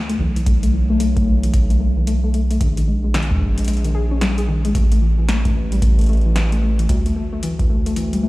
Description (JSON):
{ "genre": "IDM", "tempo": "112 BPM", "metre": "4/4", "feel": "swing 62% on 16ths", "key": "unclear", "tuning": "A4 = 439 Hz", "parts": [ { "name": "round analog bass", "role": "bass", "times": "0.0-8.3 s", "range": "A1 to D2", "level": "-18 LUFS", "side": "equal", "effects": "none" }, { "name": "soft round pluck", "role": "arpeggios", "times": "0.1-8.3 s", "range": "D#3 to Ab4", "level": "-22 LUFS", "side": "left 3 dB", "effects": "wide subtle chorus, cassette tape, dub echo" }, { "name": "electro analog drum machine", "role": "drums", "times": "0.1-8.2 s", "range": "hi-hat, snare drum", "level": "-29 LUFS", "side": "equal", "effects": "dub echo" }, { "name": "electronic kick drum", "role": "drums", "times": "0.5-7.7 s", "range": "none", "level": "-19 LUFS", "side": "equal", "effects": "none" } ], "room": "digital ambience", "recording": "played on a big sound system in a bare room, stone room reverb", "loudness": "-15 LUFS", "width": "side -19 dB against mid", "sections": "0.0-8.3 A section", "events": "none", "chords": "0.2 B7sus4; 2.6 Bb7(no3); 4.8 A5; 6.9 Dsus2", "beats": "| 0.46 1.00 1.54 2.07 | 2.61 3.14 3.68 4.21 | 4.75 5.29 5.82 6.36 | 6.89 7.43 7.96" }